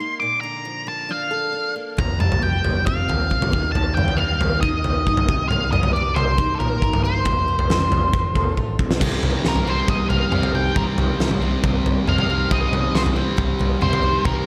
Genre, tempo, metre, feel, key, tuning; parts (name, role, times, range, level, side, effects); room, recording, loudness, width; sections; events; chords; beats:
quiet-loud alternative rock; 137 BPM; 4/4; straight; C dorian; A4 = 441 Hz
octave-fuzz lead guitar; melody; 0.0-14.5 s; A4 to D6; -26 LUFS; equal; distortion
picked steel-string acoustic guitar; arpeggios; 0.0-14.5 s; Bb2 to Bb4; -32 LUFS; equal; slapback echo, tape echo
overdriven picked electric bass; bass; 2.0-14.4 s; F1 to Bb2; -27 LUFS; equal
big rock drum kit; drums; 2.0-14.4 s; crash cymbal, kick drum, snare drum, toms; -23 LUFS; equal
sludgy distorted guitar; riff; 9.0-14.5 s; C3 to C4; -26 LUFS; equal; overdrive, slapback echo
moderate lush hall reverb, RT60 1.9 s, studio ambience; big arena sound; -20 LUFS; mono
0.0-9.0 A section; 9.0-14.5 B section
drum fill 8.6-9.0; lead electric guitar solo 9.0-14.5
0.2 Bbmaj7; 2.0 Fsus2; 3.5 Eb; 5.3 Cm7; 7.3 Fadd9; 9.0 Cm
| 0.23 0.67 1.11 1.55 | 1.99 2.43 2.87 3.31 | 3.75 4.19 4.63 5.07 | 5.51 5.95 6.38 6.82 | 7.26 7.70 8.14 8.57 | 9.01 9.45 9.88 10.32 | 10.76 11.20 11.63 12.07 | 12.51 12.94 13.38 13.82 | 14.25